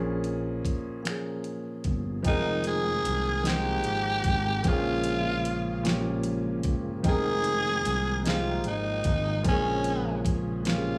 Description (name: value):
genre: slow six-eight R&B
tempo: 50 BPM (dotted quarters)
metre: 6/8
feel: straight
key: Bb dorian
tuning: A4 = 438 Hz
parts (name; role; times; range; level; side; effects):
- warm grand piano; accompaniment; 0.0-11.0 s; Bb2 to G5; -34 LUFS; equal; none
- sustaining fretless electric bass; bass; 0.0-11.0 s; F1 to C2; -34 LUFS; equal; lush chorus
- smooth R&B drum kit; drums; 0.2-10.8 s; finger snaps, hi-hat, kick drum, snare drum; -32 LUFS; equal; none
- mellow tonewheel organ; sustained chords; 2.2-11.0 s; Db3 to G5; -39 LUFS; equal; none
- raspy tenor saxophone; melody; 2.3-11.0 s; Db4 to Ab4; -31 LUFS; equal; none
room: light reverb, digital ambience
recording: studio reverb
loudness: -28 LUFS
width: mono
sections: 0.0-2.2 A section; 2.2-11.0 B section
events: none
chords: 0.0 Bbm7; 2.2 Fm11; 4.6 Bbm7; 7.0 Fm11; 9.4 Bbm7